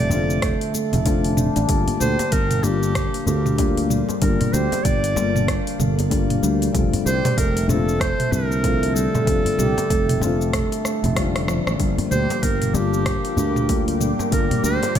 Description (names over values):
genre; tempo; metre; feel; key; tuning
organic downtempo; 95 BPM; 4/4; swing 60% on 16ths; G minor; A4 = 435 Hz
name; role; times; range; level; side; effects
warm clarinet; melody; 0.0-15.0 s; G4 to D5; -26 LUFS; right 1 dB; digital delay
felt-muted upright piano; accompaniment; 0.0-15.0 s; D3 to F4; -26 LUFS; left 6 dB; sidechain pumping, tape echo
sustaining fretless electric bass; bass; 0.0-15.0 s; F1 to D2; -23 LUFS; right 1 dB; analog chorus
handpan; arpeggios; 0.1-15.0 s; D3 to G4; -26 LUFS; right 1 dB; tape echo
afro-pop drum kit; drums; 0.1-15.0 s; hi-hat, rim click, shaker, toms; -26 LUFS; right 1 dB; studio reverb
djembe; percussion; 0.1-14.9 s; none; -29 LUFS; left 1 dB; none
electronic kick drum; drums; 0.4-15.0 s; none; -24 LUFS; equal; overdrive, studio reverb
ethereal airy pad; sustained chords; 12.4-15.0 s; F4 to D6; -31 LUFS; left 2 dB; ensemble chorus, built-in reverb, phaser, sidechain pumping
room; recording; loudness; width
light reverb, studio ambience; none; -18 LUFS; side -9 dB against mid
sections
0.0-15.0 A section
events
drum fill 10.8-11.8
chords
0.0 F6; 1.7 Gm7; 6.7 F6; 11.8 Gm7